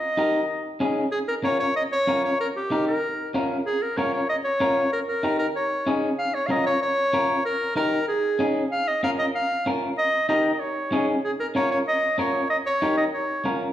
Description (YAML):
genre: latin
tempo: 190 BPM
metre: 4/4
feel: straight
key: Bb dorian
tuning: A4 = 440 Hz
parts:
  - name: clear clarinet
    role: melody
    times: 0.0-13.6 s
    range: G4 to F5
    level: -24 LUFS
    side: equal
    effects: none
  - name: electric guitar at the edge of break-up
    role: accompaniment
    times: 0.2-13.7 s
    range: Db4 to Bb4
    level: -25 LUFS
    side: left 1 dB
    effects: none
room: wet large studio reverb, RT60 1.4 s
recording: heard from further back in the room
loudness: -21 LUFS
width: side -12 dB against mid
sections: 0.0-3.7 A section; 3.7-13.7 A section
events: none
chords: 0.5 Dbsus2; 1.1 Bbm; 2.4 Eb; 3.0 Bbm; 4.9 Eb; 5.6 Dbsus2; 6.2 Bbm; 7.5 Eb; 8.1 Dbsus2; 8.7 Bbm; 10.0 Eb; 10.6 Dbsus2; 11.2 Bbm; 12.5 Eb; 13.1 Bbm